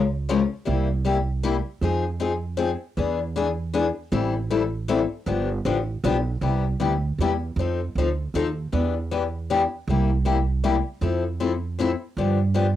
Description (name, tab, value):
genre	acoustic string swing (jazz manouche)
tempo	156 BPM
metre	3/4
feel	swing 61% on 8ths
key	C major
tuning	A4 = 440 Hz
part	upright bass	bass	0.0-12.8 s	G1 to G2	-25 LUFS	right 3 dB	none
part	picked steel-string acoustic guitar	accompaniment	0.3-12.7 s	C3 to Bb4	-24 LUFS	left 5 dB	cassette tape
room	light reverb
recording	home recording on cassette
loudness	-22 LUFS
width	side -12 dB against mid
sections	0.0-6.4 A section; 6.4-12.8 A section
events	none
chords	0.0 Db6; 0.7 C7; 1.8 Fm7; 3.0 E7; 4.1 Am7; 5.3 G7; 6.4 Cmaj9; 7.6 F7; 8.7 Em7; 9.9 C7; 11.0 Fmaj7; 12.2 G7